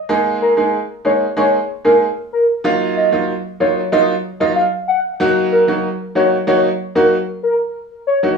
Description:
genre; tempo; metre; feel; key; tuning
dancehall; 94 BPM; 4/4; straight; Eb minor; A4 = 443 Hz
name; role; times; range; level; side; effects
bright grand piano; accompaniment; 0.1-8.4 s; Gb3 to Ab4; -16 LUFS; right 2 dB; cassette tape
warm velvety synth lead; melody; 0.4-8.2 s; Bb4 to Gb5; -16 LUFS; left 1 dB; chorus, cassette tape, analog delay
room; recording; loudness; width
moderate studio reverb, RT60 0.5 s; home recording on cassette, studio ambience; -14 LUFS; side -5 dB against mid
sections
0.0-5.2 A section; 5.2-8.4 B section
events
none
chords
0.1 Absus2; 2.6 Ebmadd9; 5.2 Ebm

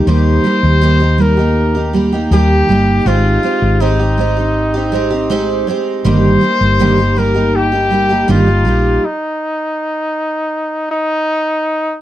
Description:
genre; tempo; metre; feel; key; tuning
acoustic pop; 80 BPM; 4/4; straight; Eb major; A4 = 440 Hz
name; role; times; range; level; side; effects
picked twelve-string acoustic guitar; accompaniment; 0.0-9.0 s; G2 to G4; -14 LUFS; right 2 dB; none
clear trumpet; melody; 0.1-12.0 s; Eb4 to C5; -16 LUFS; left 1 dB; none
hollow-body short-scale fingered electric bass; bass; 0.1-9.0 s; G1 to Eb2; -14 LUFS; equal; none
room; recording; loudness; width
little or no reverb; dark, warm production; -11 LUFS; side -13 dB against mid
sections
0.0-12.0 A section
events
stop 9.0-12.0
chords
0.1 Eb; 3.1 Abmaj7; 6.0 Eb/G; 9.0 N.C.

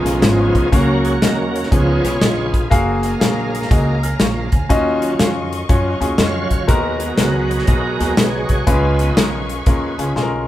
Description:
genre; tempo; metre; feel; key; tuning
uptempo gospel; 121 BPM; 4/4; swing 64% on 8ths; F# major; A4 = 440 Hz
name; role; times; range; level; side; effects
warm grand piano; accompaniment; 0.0-10.5 s; C#3 to E#6; -20 LUFS; left 2 dB; none
bright tonewheel organ; sustained chords; 0.0-10.1 s; E#3 to E#5; -22 LUFS; right 1 dB; fast rotary speaker, overdrive, chorus vibrato
warm studio string section; sustained chords; 0.0-10.5 s; C#5 to C#6; -30 LUFS; left 1 dB; none
upright bass; bass; 0.0-10.4 s; F#1 to F#2; -22 LUFS; equal; none
modern studio drum kit; drums; 0.1-10.3 s; hi-hat, kick drum, snare drum; -18 LUFS; equal; none
room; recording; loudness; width
moderate large studio reverb, RT60 0.9 s; band playing live in one room; -14 LUFS; side -14 dB against mid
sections
0.0-10.5 A section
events
tonewheel organ solo 0.0-10.5; drum fill 10.2-10.5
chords
0.0 C#7; 0.7 F#/C#; 1.7 C#7; 2.7 F#maj9; 4.7 D#m9; 6.7 G#m9; 8.7 C#7

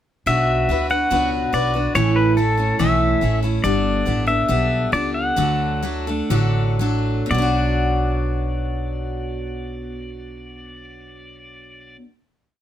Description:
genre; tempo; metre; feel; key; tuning
honky-tonk and classic country; 114-143 BPM; 4/4; straight; B minor; A4 = 440 Hz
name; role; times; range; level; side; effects
pedal steel guitar; melody; 0.3-12.0 s; A4 to F#5; -23 LUFS; left 1 dB; none
picked steel-string acoustic guitar; accompaniment; 0.3-12.1 s; A2 to B4; -22 LUFS; left 1 dB; none
upright bass; bass; 0.3-12.0 s; G1 to D2; -22 LUFS; right 1 dB; none
room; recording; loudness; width
little or no reverb; close, detailed microphones; -17 LUFS; side -11 dB against mid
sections
0.3-7.3 A section; 7.3-11.5 final chord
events
slowing down 3.6-7.3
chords
0.3 Bm; 2.0 A; 3.6 Gadd9; 5.4 D; 7.3 Bm

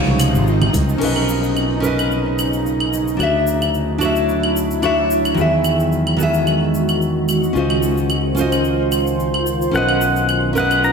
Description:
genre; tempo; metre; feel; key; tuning
sunset chillout; 110 BPM; 4/4; swing 54% on 16ths; B major; A4 = 440 Hz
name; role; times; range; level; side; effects
pedal steel guitar; melody; 0.0-0.2, 9.8-10.9 s; F#5 to A#5; -19 LUFS; equal; ping-pong delay
nylon-string guitar; accompaniment; 0.0-10.9 s; B#2 to E5; -19 LUFS; equal; auto-pan, digital delay
shimmering ambient pad; sustained chords; 0.0-10.9 s; B#2 to B#4; -22 LUFS; right 1 dB; chorus, built-in reverb
overdriven fingered electric bass; bass; 0.0-10.9 s; G#1 to E2; -21 LUFS; equal; none
congas; percussion; 0.1-0.9 s; none; -26 LUFS; right 3 dB; none
deep house drum kit; drums; 0.2-10.9 s; claves, crash cymbal, hi-hat, shaker; -25 LUFS; equal; overdrive
electronic kick drum; drums; 0.7-0.9 s; none; -23 LUFS; equal; none
room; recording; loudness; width
wet lush hall reverb, RT60 2.1 s; big arena sound; -15 LUFS; side -5 dB against mid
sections
0.0-1.0 A section; 1.0-10.9 B section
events
none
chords
0.0 C#maj9; 1.0 Bmaj9; 3.2 Dmaj9; 5.4 Emaj9; 7.6 C#maj9; 9.7 Bmaj9

